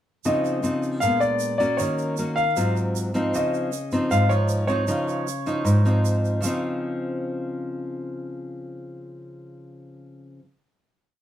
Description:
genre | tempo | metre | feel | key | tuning
bossa nova | 156 BPM | 4/4 | straight | Db major | A4 = 438 Hz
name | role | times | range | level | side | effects
egg shaker | percussion | 0.2-6.5 s | none | -37 LUFS | right 9 dB | none
warm concert grand piano | melody | 0.3-6.0 s | Db5 to F5 | -24 LUFS | left 1 dB | none
nylon-string guitar | accompaniment | 0.3-10.5 s | Ab2 to Gb4 | -24 LUFS | equal | none
room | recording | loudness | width
moderate studio reverb, RT60 0.5 s | none | -21 LUFS | side -11 dB against mid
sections
0.3-6.4 A section; 6.4-9.5 final chord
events
none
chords
0.3 Dbmaj9; 1.0 Bb7b9; 1.8 Ebm7; 2.6 Ab6; 3.3 Dbmaj9

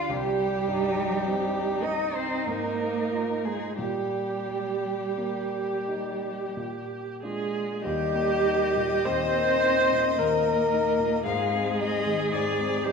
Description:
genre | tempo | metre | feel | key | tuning
classical, slow romantic movement for piano quartet | 43-58 BPM | 3/4 | rubato | Eb major | A4 = 440 Hz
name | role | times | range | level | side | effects
rich violin | melody | 0.0-12.9 s | G4 to F5 | -29 LUFS | left 7 dB | none
rich cello | second line | 0.0-12.9 s | G3 to F4 | -31 LUFS | right 5 dB | none
dark baby grand piano | accompaniment | 0.0-12.9 s | C2 to G4 | -33 LUFS | left 2 dB | none
rich viola | accompaniment | 0.0-12.9 s | D4 to C5 | -28 LUFS | right 3 dB | none
room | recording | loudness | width
wet recital hall reverb, RT60 1.4 s | recorded in a church or concert hall | -24 LUFS | side -5 dB against mid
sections
0.0-7.8 A section; 7.8-12.9 B section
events
none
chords
0.1 Cm; 2.5 Fm7/Ab; 3.8 Eb/Bb; 6.6 Bb; 7.8 Eb; 11.3 Ab

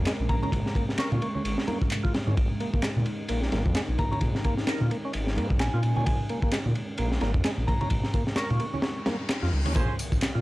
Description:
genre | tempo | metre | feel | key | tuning
breakbeat, breaks | 130 BPM | 4/4 | swing 57% on 16ths | Bb minor | A4 = 440 Hz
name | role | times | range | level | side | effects
dark analog pad | sustained chords | 0.0-9.7 s | Ab3 to Bb4 | -36 LUFS | right 1 dB | chorus, vintage 12-bit sampler grit, sidechain pumping
detuned saw bass | bass | 0.0-10.4 s | Ab1 to Bb2 | -27 LUFS | equal | none
overdriven tonewheel organ | riff | 0.1-10.4 s | Ab3 to Bb4 | -34 LUFS | equal | chorus vibrato, slow rotary speaker, tube saturation, analog delay
crunchy breakbeat drum kit | drums | 0.1-10.3 s | kick drum, ride cymbal, snare drum | -28 LUFS | equal | none
punchy analog drum machine | drums | 0.1-10.3 s | handclaps, ride cymbal, tambourine | -34 LUFS | equal | overdrive
soft synth bell | melody | 0.3-9.0 s | Ab5 to Db6 | -36 LUFS | equal | chorus, old record sound, analog delay
congas | percussion | 0.4-9.7 s | none | -37 LUFS | right 2 dB | none
reverse cymbal and impact | sound effects | 9.0-10.4 s | none | -37 LUFS | left 1 dB | none
warm horn section | stabs | 9.8-9.9 s | Db4 to C5 | -35 LUFS | right 4 dB | analog delay
room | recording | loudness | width
little or no reverb | dry, gritty hardware recording, cassette tape | -24 LUFS | side -18 dB against mid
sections
0.0-9.8 A section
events
reverse cymbal 9.0-9.8; impact 9.8-10.4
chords
0.0 Bbm7

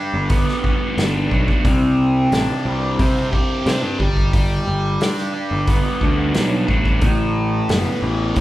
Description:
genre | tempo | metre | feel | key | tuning
psychedelic rock | 89 BPM | 4/4 | straight | unclear | A4 = 440 Hz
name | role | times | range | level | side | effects
fuzz guitar | riff | 0.0-8.4 s | A2 to G4 | -20 LUFS | equal | distortion, phaser
fuzz picked electric bass | bass | 0.1-8.4 s | F#1 to C3 | -21 LUFS | equal | overdrive
vintage drum kit | drums | 0.3-8.4 s | hi-hat, kick drum, snare drum | -20 LUFS | equal | none
room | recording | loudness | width
light reverb | band playing live in one room | -16 LUFS | side -15 dB against mid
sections
0.0-8.4 A section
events
none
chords
0.0 Gmaj7; 1.6 Csus2; 4.0 Gmaj7; 7.0 Asus2

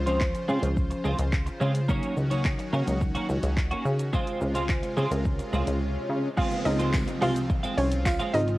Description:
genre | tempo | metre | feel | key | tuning
dance-pop | 107 BPM | 4/4 | straight | Db major | A4 = 439 Hz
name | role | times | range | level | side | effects
supersaw pad | sustained chords | 0.0-8.6 s | C3 to C5 | -36 LUFS | equal | sidechain pumping, cassette tape
plucky analog bass | bass | 0.0-8.6 s | Ab1 to Db3 | -27 LUFS | equal | sidechain pumping
glassy digital keys | accompaniment | 0.1-8.6 s | Db3 to Db5 | -32 LUFS | left 1 dB | chorus, sidechain pumping, cassette tape
twelve-string electric guitar | riff | 0.1-8.5 s | Ab3 to Gb4 | -32 LUFS | right 2 dB | ensemble chorus, cassette tape
deep house drum kit | drums | 0.1-8.6 s | crash cymbal, handclaps, hi-hat, kick drum, shaker | -29 LUFS | equal | cassette tape
swell and downlifter | sound effects | 5.3-8.6 s | none | -38 LUFS | equal | none
hollow square pluck | melody | 6.4-8.4 s | Db4 to F5 | -29 LUFS | right 1 dB | chorus, cassette tape, tape echo
tambourine | percussion | 6.9-8.2 s | none | -45 LUFS | left 3 dB | none
room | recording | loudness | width
digital ambience | home recording on cassette | -24 LUFS | side -18 dB against mid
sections
0.0-6.4 A section; 6.4-8.6 B section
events
swell 5.3-6.4; silent gap 5.8-6.4; drop 6.4-8.6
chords
0.0 Dbmaj7; 1.9 Ebm7/Db; 4.1 Ab6; 6.4 Dbmaj7

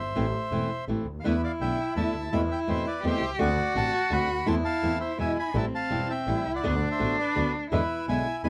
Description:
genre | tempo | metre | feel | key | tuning
tango | 167 BPM | 3/4 | rubato | A minor | A4 = 441 Hz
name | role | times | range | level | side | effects
bandoneon | melody | 0.0-8.5 s | B4 to C6 | -34 LUFS | equal | none
bright double bass | bass | 0.0-8.5 s | E1 to E2 | -33 LUFS | equal | none
flamenco guitar | accompaniment | 0.2-8.5 s | B2 to F#4 | -32 LUFS | equal | none
rich cello | second line | 1.2-8.5 s | C4 to G4 | -32 LUFS | equal | none
room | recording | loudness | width
light reverb | close, detailed microphones | -27 LUFS | mono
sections
0.0-8.5 A section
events
none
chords
0.2 Am; 1.2 E7sus4; 2.3 Amadd9/E; 3.4 D7; 4.5 Am/E; 5.2 E; 5.6 Am7; 6.6 D6; 7.7 E7

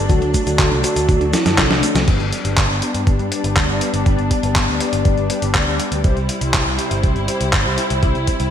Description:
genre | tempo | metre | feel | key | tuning
italo disco | 121 BPM | 4/4 | straight | G major | A4 = 440 Hz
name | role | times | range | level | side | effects
soft octave-layered synth lead | melody | 0.0-2.0 s | D4 to F#4 | -22 LUFS | equal | chorus, tremolo, cassette tape, ping-pong delay
dark studio string section | sustained chords | 0.0-8.5 s | F#3 to E4 | -23 LUFS | left 1 dB | none
wide unison pluck | arpeggios | 0.0-2.1 s | F#3 to F#4 | -28 LUFS | right 3 dB | none
mellow synth brass | stabs | 0.0-8.5 s | C3 to D5 | -25 LUFS | left 4 dB | chorus, vintage 12-bit sampler grit, digital delay
picked electric bass | bass | 0.0-8.5 s | G1 to G2 | -21 LUFS | equal | none
dusty soul sampler-style drum kit | drums | 0.1-8.5 s | cabasa, crash cymbal, handclaps, hi-hat, snare drum | -20 LUFS | equal | small room ambience, gated reverb
electronic kick drum | drums | 0.1-8.4 s | none | -17 LUFS | equal | small room ambience
room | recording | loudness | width
moderate lush hall reverb, RT60 1.8 s, digital ambience | bright 1980s-style digital production | -15 LUFS | side -9 dB against mid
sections
0.0-2.1 A section; 2.1-8.5 B section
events
drum fill 1.3-2.1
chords
0.1 D; 2.1 G; 6.0 C

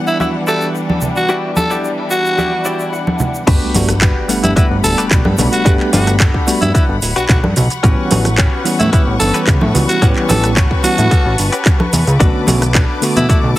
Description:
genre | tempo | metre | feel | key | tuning
nu-disco, nu disco | 110 BPM | 4/4 | straight | unclear | A4 = 440 Hz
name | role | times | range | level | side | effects
bell-like tine electric piano | accompaniment | 0.0-13.6 s | D3 to F#5 | -19 LUFS | equal | fast stereo tremolo, digital delay
rich studio string section | sustained chords | 0.0-13.6 s | E3 to D6 | -24 LUFS | left 2 dB | sidechain pumping
raspy tenor saxophone | melody | 0.1-13.6 s | E4 to A4 | -19 LUFS | equal | digital delay
egg shaker and congas | percussion | 0.1-13.6 s | none | -20 LUFS | right 1 dB | none
direct-recorded clean electric guitar | riff | 0.2-13.5 s | C#4 to F#5 | -22 LUFS | left 3 dB | lush chorus
fat analog bass | bass | 3.5-13.5 s | D1 to B2 | -16 LUFS | equal | none
electronic kick drum | drums | 3.5-13.4 s | none | -13 LUFS | equal | none
house drum kit | drums | 3.5-13.4 s | crash cymbal, handclaps, hi-hat, rim click, shaker | -19 LUFS | right 1 dB | none
sub drop | sound effects | 3.5-5.7 s | none | -27 LUFS | equal | none
room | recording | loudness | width
light reverb | heavily compressed radio sound, multiband compression | -11 LUFS | side -16 dB against mid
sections
0.0-3.5 A section; 3.5-13.6 B section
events
clean electric guitar fill 2.4-3.5, 11.4-12.2; drop 3.5-13.6; impact 3.5-5.7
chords
0.0 Em9; 3.5 Gmaj7; 7.8 A13; 12.2 Bm7

